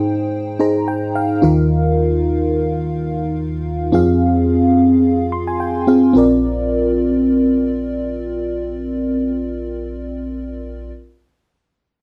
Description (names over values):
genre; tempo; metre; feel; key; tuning
pop; 108 BPM; 4/4; swing 55% on 16ths; Bb mixolydian; A4 = 441 Hz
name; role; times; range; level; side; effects
FM electric piano with soft pad layer; solo; 0.0-10.9 s; Bb1 to C6; -17 LUFS; equal; chorus
room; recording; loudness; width
moderate booth ambience, RT60 0.2 s; dry, close 1970s-style studio recording; -17 LUFS; mono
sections
0.0-6.2 A section; 6.2-8.4 B section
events
FM electric piano fill 0.6-1.7, 5.0-6.2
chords
0.0 Abmaj7; 1.4 Ebsus2; 3.9 Fm; 6.2 Bbadd9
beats
0.04 0.60 1.16 | 1.71 2.27 2.82 3.38 | 3.93 4.49 5.04 5.60 | 6.16 6.71 7.27 7.82